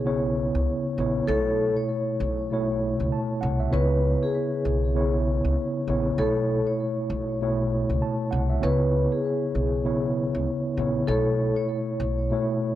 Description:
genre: hip hop, boom-bap hip-hop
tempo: 98 BPM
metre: 4/4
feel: swing 60% on 16ths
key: C# minor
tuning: A4 = 438 Hz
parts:
  - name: vibraphone with soft mallets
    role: melody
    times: 0.0-12.4 s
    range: G#4 to C#5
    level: -30 LUFS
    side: left 2 dB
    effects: high-pass filter, low-pass filter, tape echo
  - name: mellow tine electric piano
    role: accompaniment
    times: 0.0-12.8 s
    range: B2 to A5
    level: -25 LUFS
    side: equal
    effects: medium stereo tremolo, high-pass filter, low-pass filter
  - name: upright bass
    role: bass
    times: 0.0-12.3 s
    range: A#1 to C#2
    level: -27 LUFS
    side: equal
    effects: tube saturation
room: light reverb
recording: dry, gritty hardware recording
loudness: -22 LUFS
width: side -13 dB against mid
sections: 0.0-12.8 A section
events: none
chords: 0.0 C#m7; 1.3 B9sus4; 3.7 C#m7; 6.2 B9sus4; 8.6 C#m7; 11.1 B9sus4

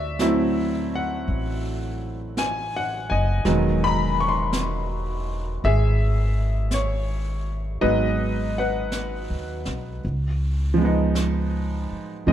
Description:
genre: jazz ballad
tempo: 55 BPM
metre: 4/4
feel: swing 68% on 8ths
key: C# minor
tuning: A4 = 440 Hz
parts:
  - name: bright upright piano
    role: accompaniment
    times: 0.0-12.3 s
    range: D#3 to C#6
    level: -24 LUFS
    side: equal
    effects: none
  - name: upright bass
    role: bass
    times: 0.0-12.3 s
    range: E1 to F#2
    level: -25 LUFS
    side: equal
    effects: none
  - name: jazz brush drum kit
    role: drums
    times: 0.2-12.3 s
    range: brushed snare drum, hi-hat, snare drum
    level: -34 LUFS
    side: right 1 dB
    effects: none
room: light reverb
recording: dark, warm production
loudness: -21 LUFS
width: side -10 dB against mid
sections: 0.0-12.3 A section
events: none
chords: 0.0 D9; 3.5 Emaj7; 7.8 G#m7; 10.0 C#9

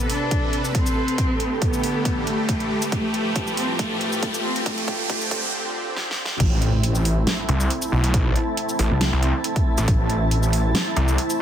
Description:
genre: heavy wobble dubstep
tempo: 138 BPM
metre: 4/4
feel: swing 54% on 16ths, half-time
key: A minor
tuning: A4 = 439 Hz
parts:
  - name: supersaw pad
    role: sustained chords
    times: 0.0-11.4 s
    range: A2 to B4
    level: -28 LUFS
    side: right 2 dB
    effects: sidechain pumping, low-pass filter
  - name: riser and impact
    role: sound effects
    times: 1.3-8.1 s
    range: none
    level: -30 LUFS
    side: equal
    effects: none
  - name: granular cloud pad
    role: texture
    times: 0.5-11.4 s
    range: A3 to B5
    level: -30 LUFS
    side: right 1 dB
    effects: built-in reverb, sidechain pumping
  - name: warm cello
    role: melody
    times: 0.1-5.5 s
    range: A3 to D4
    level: -26 LUFS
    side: left 1 dB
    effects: ping-pong delay
  - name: dubstep drum kit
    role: drums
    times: 0.1-11.4 s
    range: crash cymbal, hi-hat, shaker, snare drum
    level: -27 LUFS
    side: right 1 dB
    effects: none
  - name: electronic kick drum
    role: drums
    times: 0.3-10.0 s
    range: none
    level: -24 LUFS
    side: equal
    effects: none
  - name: wobble bass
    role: bass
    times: 6.4-10.7 s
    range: A1 to C2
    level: -20 LUFS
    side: equal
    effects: chorus, overdrive
  - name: snarling distorted saw bass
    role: bass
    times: 7.5-11.2 s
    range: A1 to C2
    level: -20 LUFS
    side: equal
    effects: overdrive
room: light reverb, digital ambience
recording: dense, heavily limited modern master, high-pass filter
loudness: -19 LUFS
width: side -10 dB against mid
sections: 0.0-6.4 A section; 6.4-11.4 B section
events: build-up 0.0-6.4; filter sweep 0.0-6.4; riser 1.3-5.5; drum fill 2.9-5.5, 6.0-6.4; break 5.5-6.4; drop 6.4-11.4; impact 6.4-8.1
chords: 0.0 Amadd9; 1.2 Gadd9; 2.9 Fadd9/A; 4.7 Csus2; 6.4 Am

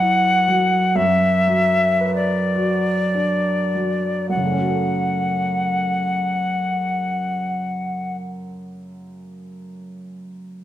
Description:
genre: classical, romantic duo for flute and grand piano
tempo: 33-42 BPM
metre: 4/4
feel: rubato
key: F# minor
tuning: A4 = 440 Hz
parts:
  - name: bright concert flute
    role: melody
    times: 0.0-8.2 s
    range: D5 to F#5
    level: -20 LUFS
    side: left 2 dB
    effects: none
  - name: warm baby grand piano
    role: accompaniment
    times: 0.0-10.6 s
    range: F#2 to C#5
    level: -22 LUFS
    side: right 2 dB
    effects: none
room: wet recital hall reverb, RT60 1.5 s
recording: none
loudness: -18 LUFS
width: side -12 dB against mid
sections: 0.0-4.3 A section; 4.3-10.6 B section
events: slowing down 0.0-4.3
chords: 0.0 F#7(no3); 1.0 Bm/F#; 4.3 F#m

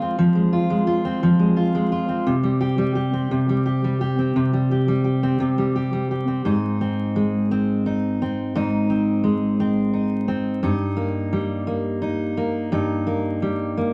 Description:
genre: pop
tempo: 58 BPM (dotted quarters)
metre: 6/8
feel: straight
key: Ab major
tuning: A4 = 440 Hz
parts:
  - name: fingerpicked steel-string acoustic guitar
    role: solo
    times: 0.0-13.9 s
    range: G2 to G4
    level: -22 LUFS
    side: equal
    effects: none
room: wet studio reverb, RT60 0.5 s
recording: vinyl crackle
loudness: -22 LUFS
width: mono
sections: 0.0-6.5 A section; 6.5-13.9 B section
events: none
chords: 0.0 Fm; 2.3 C5; 6.5 Ab; 10.6 Eb/G

